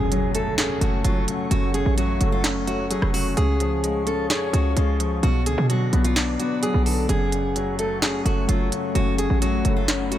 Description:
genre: hip hop, trap.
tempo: 129 BPM.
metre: 4/4.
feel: half-time.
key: F# harmonic minor.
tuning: A4 = 440 Hz.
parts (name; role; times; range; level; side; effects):
fingerpicked steel-string acoustic guitar; melody; 0.0-10.2 s; E#4 to A4; -28 LUFS; right 2 dB; diffuse ambient delay.
warm concert grand piano; accompaniment; 0.0-10.2 s; F#2 to C#5; -25 LUFS; left 3 dB; wide subtle chorus.
glassy FM pad; sustained chords; 0.0-10.2 s; A3 to D6; -32 LUFS; left 3 dB; ensemble chorus, built-in reverb.
short 808-style bass; bass; 0.0-10.2 s; E#1 to B2; -23 LUFS; right 1 dB; none.
impact; sound effects; 0.0-1.5 s; none; -30 LUFS; right 2 dB; none.
trap drum kit; drums; 0.1-10.2 s; handclaps, hi-hat, rim click, snare drum; -26 LUFS; right 1 dB; none.
room: light reverb.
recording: none.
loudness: -20 LUFS.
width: side -12 dB against mid.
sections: 0.0-10.2 A section.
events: impact 0.0-1.5.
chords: 0.0 F#m; 3.4 C#; 5.2 Bm; 7.1 F#m.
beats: 0.12 0.58 1.04 | 1.51 1.98 2.44 2.91 | 3.37 3.84 4.30 4.77 | 5.23 5.70 6.16 6.63 | 7.09 7.56 8.02 8.49 | 8.95 9.42 9.88.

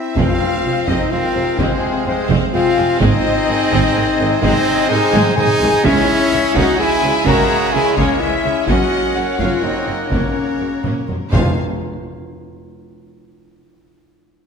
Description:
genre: cinematic, epic orchestral film score.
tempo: 127 BPM.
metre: 3/4.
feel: straight.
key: F phrygian.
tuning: A4 = 440 Hz.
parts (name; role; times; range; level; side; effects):
warm symphonic violin section; melody; 0.0-11.6 s; C5 to Bb5; -25 LUFS; left 4 dB; none.
silver concert flute; second line; 0.0-11.6 s; C5 to Bb5; -26 LUFS; left 2 dB; none.
dark French horn section; sustained chords; 0.0-11.5 s; C4 to Bb4; -20 LUFS; left 4 dB; none.
warm trumpet; stabs; 0.0-11.5 s; Ab3 to Gb4; -21 LUFS; right 2 dB; none.
warm symphonic viola section; accompaniment; 0.2-11.6 s; C3 to C5; -24 LUFS; right 1 dB; none.
bright trombone section; sustained chords; 0.2-11.5 s; C3 to Bb3; -28 LUFS; right 4 dB; none.
clear woodwind section; sustained chords; 0.2-11.5 s; Ab3 to Ab5; -28 LUFS; left 2 dB; none.
rich symphonic cello section; bass; 0.2-11.6 s; F2 to Db3; -25 LUFS; right 3 dB; none.
warm symphonic double bass section; bass; 0.2-11.6 s; F1 to Db2; -24 LUFS; right 5 dB; none.
taiko ensemble; drums; 0.2-12.2 s; none; -23 LUFS; equal; none.
timpani; percussion; 0.2-0.8, 11.3-11.6 s; F2; -22 LUFS; equal; none.
rich symphonic violin section; second line; 0.7-11.6 s; Ab4 to Ab5; -26 LUFS; left 4 dB; none.
room: wet scoring stage reverb, RT60 1.8 s.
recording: none.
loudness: -13 LUFS.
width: side -6 dB against mid.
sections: 0.2-11.6 A section; 11.6-13.0 B section.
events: break 0.0; drum fill 0.0, 5.1-5.8, 10.8-11.6.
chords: 0.2 Fm; 3.0 Ab; 5.8 Dbm; 8.7 Gb; 11.3 Fm; 11.6 N.C..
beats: | 0.17 0.64 1.12 | 1.59 2.07 2.54 | 3.01 3.48 3.96 | 4.43 4.90 5.38 | 5.85 6.32 6.79 | 7.26 7.74 8.21 | 8.68 9.15 9.63 | 10.12 10.60 11.09 | 11.57 12.04.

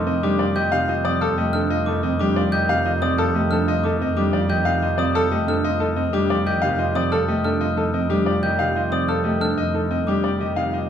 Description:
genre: classical, minimalist pattern music.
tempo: 183 BPM.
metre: 6/4.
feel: straight.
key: F mixolydian.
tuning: A4 = 440 Hz.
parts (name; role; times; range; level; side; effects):
clear concert grand piano; melody; 0.0-10.9 s; G4 to F5; -23 LUFS; left 5 dB; none.
Celtic harp; accompaniment; 0.0-10.9 s; C3 to A3; -25 LUFS; left 1 dB; none.
glockenspiel with soft plastic mallets; arpeggios; 0.0-10.3 s; D6 to G6; -27 LUFS; left 2 dB; none.
mellow electric guitar; arpeggios; 0.0-10.9 s; C4 to A4; -27 LUFS; right 8 dB; none.
warm double bass; bass; 0.0-10.9 s; F2; -26 LUFS; right 4 dB; none.
room: wet recital hall reverb, RT60 1.4 s.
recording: none.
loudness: -18 LUFS.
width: side -8 dB against mid.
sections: 0.0-10.9 A section.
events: none.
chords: 0.0 F9.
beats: 0.23 0.56 0.89 | 1.22 1.54 1.87 2.20 2.53 2.85 | 3.18 3.51 3.84 4.17 4.50 4.82 | 5.15 5.48 5.81 6.13 6.46 6.79 | 7.12 7.45 7.77 8.10 8.43 8.76 | 9.09 9.41 9.74 10.07 10.40 10.72.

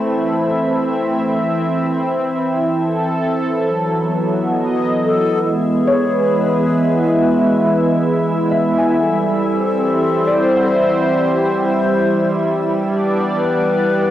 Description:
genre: ambient.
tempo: 68 BPM.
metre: 4/4.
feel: straight.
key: E mixolydian from 5.4 s.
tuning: A4 = 440 Hz.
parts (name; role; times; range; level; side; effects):
warm analog pad; sustained chords; 0.0-14.1 s; F#3 to B5; -16 LUFS; right 1 dB; chorus, tremolo, cassette tape.
concert harp; arpeggios; 0.0-13.1 s; C#5 to G#5; -22 LUFS; left 3 dB; cassette tape, analog delay.
organ-like drone; drone; 0.0-14.1 s; E3 to E4; -22 LUFS; equal; ensemble chorus, built-in reverb, cassette tape.
bright alto flute; melody; 5.0-14.1 s; E4 to C5; -22 LUFS; left 4 dB; cassette tape, analog delay.
room: wet spring reverb, RT60 1.4 s, small room ambience.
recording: home recording on cassette.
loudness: -14 LUFS.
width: side -12 dB against mid.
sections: 0.0-5.4 A section; 5.4-14.1 B section.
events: fade-in on alto flute 5.4-14.1; fade-out on synth drone 5.4-14.1.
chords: 0.0 Am/E; 3.7 B7; 5.4 E; 9.0 C; 12.5 G.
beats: 0.14 1.02 | 1.90 2.79 3.67 4.55 | 5.43 6.32 7.20 8.08 | 8.96 9.84 10.73 11.61 | 12.49 13.37.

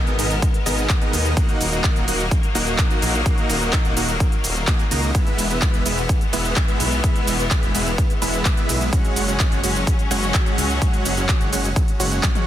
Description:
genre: EDM, festival progressive house.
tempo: 127 BPM.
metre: 4/4.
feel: straight.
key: unclear.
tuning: A4 = 440 Hz.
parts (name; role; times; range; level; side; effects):
rich studio string section; sustained chords; 0.0-12.5 s; D#3 to A#4; -27 LUFS; left 4 dB; sidechain pumping.
dense compressed supersaw; riff; 0.0-12.5 s; G#3 to A#5; -25 LUFS; right 1 dB; sidechain pumping, dub echo.
detuned saw bass; bass; 0.1-12.2 s; D#1 to D#2; -25 LUFS; equal; sidechain pumping.
big-room dance drum kit; drums; 0.1-12.4 s; handclaps, hi-hat, ride cymbal, shaker, toms; -25 LUFS; equal; none.
electronic kick drum; drums; 0.4-12.3 s; none; -19 LUFS; equal; none.
room: little or no reverb.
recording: dense, heavily limited modern master.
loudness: -17 LUFS.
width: side -12 dB against mid.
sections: 0.0-12.5 A section.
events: drum fill 12.2.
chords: 0.0 G#madd9; 1.4 D#m; 5.1 E; 8.9 F#sus2.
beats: 0.42 0.90 | 1.37 1.84 2.31 2.79 | 3.26 3.73 4.20 4.68 | 5.15 5.62 6.09 6.57 | 7.04 7.51 7.98 8.46 | 8.93 9.40 9.87 10.35 | 10.82 11.29 11.76 12.23.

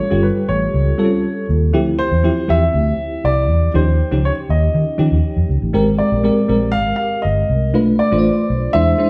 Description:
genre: polished 1980s jazz-funk pop.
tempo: 120 BPM.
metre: 4/4.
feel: straight.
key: unclear.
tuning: A4 = 440 Hz.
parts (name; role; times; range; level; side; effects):
warm grand piano; melody; 0.0-9.1 s; B4 to F5; -23 LUFS; equal; none.
bell-like FM electric piano; accompaniment; 0.0-9.1 s; F3 to D5; -20 LUFS; equal; chorus, tremolo.
vintage muted fingered electric bass; bass; 0.1-8.9 s; G1 to Eb3; -20 LUFS; equal; none.
room: wet stone room reverb, RT60 1.3 s.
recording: band playing live in one room.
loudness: -16 LUFS.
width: mono.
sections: 0.0-9.1 A section.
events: none.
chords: 0.0 A7b13; 1.7 Dm11; 3.7 Eb9; 5.7 Abmaj9; 7.7 Bm7b5.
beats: 0.24 0.74 1.24 | 1.74 2.24 2.74 3.24 | 3.74 4.24 4.74 5.24 | 5.74 6.24 6.74 7.24 | 7.74 8.24 8.74.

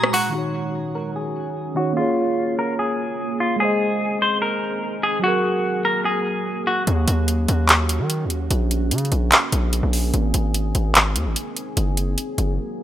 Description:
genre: hip hop, trap.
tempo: 147 BPM.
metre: 4/4.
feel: half-time.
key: Eb dorian.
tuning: A4 = 440 Hz.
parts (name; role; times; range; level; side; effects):
semi-hollow electric guitar; melody; 0.0-6.8 s; F4 to C5; -23 LUFS; left 1 dB; spring reverb, low-pass filter, tape echo.
deep dark ambient pad; sustained chords; 0.0-12.8 s; Bb2 to Ab4; -29 LUFS; right 2 dB; chorus, built-in reverb, low-pass filter.
trap drum kit; drums; 0.0-0.2, 6.9-12.5 s; handclaps, hi-hat, rim click; -18 LUFS; equal; none.
mellow tine electric piano; accompaniment; 0.3-6.9 s; Eb3 to Eb5; -24 LUFS; right 1 dB; slow stereo tremolo, low-pass filter.
distorted 808-style bass; bass; 6.9-12.6 s; Gb1 to Eb3; -20 LUFS; equal; distortion.
room: light reverb.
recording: rough home demo mix.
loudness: -19 LUFS.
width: side -12 dB against mid.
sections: 0.3-6.9 A section; 6.9-12.8 B section.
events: break 0.0-0.3, 12.6; filter sweep 0.3-6.9.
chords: 0.3 Ebm7; 2.0 Bbm7; 3.6 Ab; 5.2 Gbadd9; 6.9 Ebm7; 8.5 Bbm7; 10.1 Ab; 11.8 Gbadd9.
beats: | 0.34 0.75 1.16 1.56 | 1.97 2.38 2.79 3.20 | 3.61 4.01 4.42 4.83 | 5.24 5.65 6.05 6.46 | 6.87 7.28 7.69 8.10 | 8.50 8.91 9.32 9.73 | 10.14 10.54 10.95 11.36 | 11.77 12.18 12.59.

